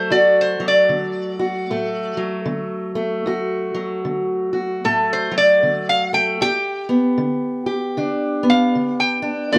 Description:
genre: acoustic country blues, solo or duo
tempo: 76 BPM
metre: 4/4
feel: swing 60% on 8ths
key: D major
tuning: A4 = 443 Hz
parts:
  - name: lap resonator guitar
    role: melody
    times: 0.0-9.6 s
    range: A4 to G5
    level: -19 LUFS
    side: equal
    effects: none
  - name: fingerpicked steel-string acoustic guitar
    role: accompaniment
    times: 0.0-9.6 s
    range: D2 to G4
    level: -23 LUFS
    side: equal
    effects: none
room: wet studio reverb, RT60 0.6 s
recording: none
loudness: -20 LUFS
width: mono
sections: 0.0-9.6 A section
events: none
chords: 0.0 D; 6.4 G

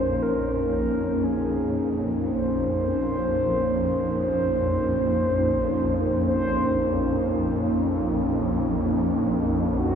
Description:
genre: dark ambient drone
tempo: free time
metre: none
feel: none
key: Bb minor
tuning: A4 = 440 Hz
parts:
  - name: mellow horn-like synth lead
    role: melody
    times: 0.0-10.0 s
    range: Gb4 to C5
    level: -27 LUFS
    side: equal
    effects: chorus, ping-pong delay
  - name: sweeping resonant pad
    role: sustained chords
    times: 0.0-10.0 s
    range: Bb3 to Eb4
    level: -25 LUFS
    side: equal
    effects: chorus
  - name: swarming drone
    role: drone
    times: 0.0-10.0 s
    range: Bb1 to F2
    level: -27 LUFS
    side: equal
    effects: built-in reverb
room: wet cathedral reverb, RT60 5.3 s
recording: dark, warm production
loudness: -22 LUFS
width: side -7 dB against mid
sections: 0.0-10.0 A section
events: fade-in on synth drone 0.0-10.0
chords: 0.0 Bbm

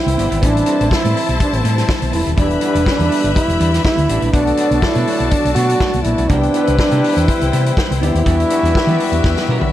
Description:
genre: disco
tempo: 122 BPM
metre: 4/4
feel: straight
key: E minor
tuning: A4 = 440 Hz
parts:
  - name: warm trombone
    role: melody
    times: 0.0-9.7 s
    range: D4 to F#4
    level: -18 LUFS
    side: right 1 dB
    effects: none
  - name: clear studio string section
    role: second line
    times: 0.0-9.7 s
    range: B3 to B5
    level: -23 LUFS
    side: left 4 dB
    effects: none
  - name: barky tine electric piano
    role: accompaniment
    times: 0.0-9.7 s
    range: B2 to B4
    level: -25 LUFS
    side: left 3 dB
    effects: ensemble chorus
  - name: semi-hollow electric guitar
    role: accompaniment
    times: 0.1-9.7 s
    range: G3 to D5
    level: -27 LUFS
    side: right 6 dB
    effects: none
  - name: hollow-body short-scale fingered electric bass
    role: bass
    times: 0.1-9.7 s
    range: D#1 to E3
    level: -18 LUFS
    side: equal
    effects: none
  - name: vintage drum kit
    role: drums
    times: 0.1-9.7 s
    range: hi-hat, kick drum, snare drum, toms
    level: -20 LUFS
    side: equal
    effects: none
  - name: mellow horn section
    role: stabs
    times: 2.4-9.7 s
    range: F#3 to B4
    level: -25 LUFS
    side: left 7 dB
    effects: none
room: small room ambience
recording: none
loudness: -13 LUFS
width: side -13 dB against mid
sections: 0.0-9.7 A section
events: drum fill 9.2-9.7; tine electric piano fill 9.2-9.7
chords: 0.4 Am7; 2.4 Em7; 4.3 Bm7; 6.3 Cmaj7; 8.3 Em9

